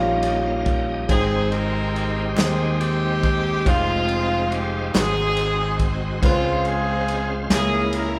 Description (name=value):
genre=slow gospel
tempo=47 BPM (dotted quarters)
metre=6/8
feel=straight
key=Ab major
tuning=A4 = 440 Hz
part: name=warm grand piano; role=accompaniment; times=0.0-8.2 s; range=Ab2 to G5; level=-27 LUFS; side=equal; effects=none
part: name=bright tonewheel organ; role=sustained chords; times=0.0-8.2 s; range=Db3 to G5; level=-32 LUFS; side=equal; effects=slow rotary speaker, chorus vibrato
part: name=fingered electric bass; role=bass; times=0.0-8.2 s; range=F1 to Eb2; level=-28 LUFS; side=equal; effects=none
part: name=warm soul drum kit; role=drums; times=0.2-8.1 s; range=kick drum, ride cymbal, snare drum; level=-27 LUFS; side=equal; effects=none
part: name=clear horn section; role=melody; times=1.1-8.2 s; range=Ab3 to Bb4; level=-26 LUFS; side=equal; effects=none
part: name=group handclap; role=percussion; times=2.4-7.9 s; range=none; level=-37 LUFS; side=equal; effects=none
room=wet large studio reverb, RT60 1.0 s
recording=band playing live in one room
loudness=-21 LUFS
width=mono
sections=0.0-8.2 A section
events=none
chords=0.0 Eb7; 1.1 Abmaj7; 3.7 Fm7; 4.9 Ab7; 6.2 Dbmaj7; 7.5 Dbm6